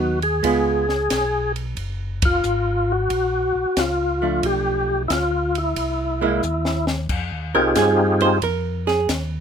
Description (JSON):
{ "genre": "soul jazz organ trio", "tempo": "90 BPM", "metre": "4/4", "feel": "swing 68% on 8ths", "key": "unclear", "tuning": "A4 = 441 Hz", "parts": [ { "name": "overdriven tonewheel organ", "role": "melody", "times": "0.0-8.4 s", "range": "C4 to G#4", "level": "-20 LUFS", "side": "left 1 dB", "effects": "slow rotary speaker, chorus vibrato" }, { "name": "archtop guitar, miked and amplified", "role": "accompaniment", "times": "0.0-9.1 s", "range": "E#3 to C5", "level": "-22 LUFS", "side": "right 6 dB", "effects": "none" }, { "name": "mellow tonewheel organ", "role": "bass", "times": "0.0-9.4 s", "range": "F#1 to G2", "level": "-25 LUFS", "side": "equal", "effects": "chorus vibrato, slow rotary speaker" }, { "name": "compact cocktail drum kit", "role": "drums", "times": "0.2-9.3 s", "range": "crash cymbal, hi-hat, kick drum, ride cymbal, snare drum", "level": "-26 LUFS", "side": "left 1 dB", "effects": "none" } ], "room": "light reverb", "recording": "minimal, uncompressed stereo recording", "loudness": "-18 LUFS", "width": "side -7 dB against mid", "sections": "0.0-7.1 A section; 7.1-9.4 B section", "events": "band accent 2.1-2.4; drum fill 6.4-7.1; hollow-body jazz guitar solo 7.1-9.4", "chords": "0.4 C#7; 1.8 F#maj7; 4.4 Bm7b5; 5.8 C7alt; 7.1 Fm9" }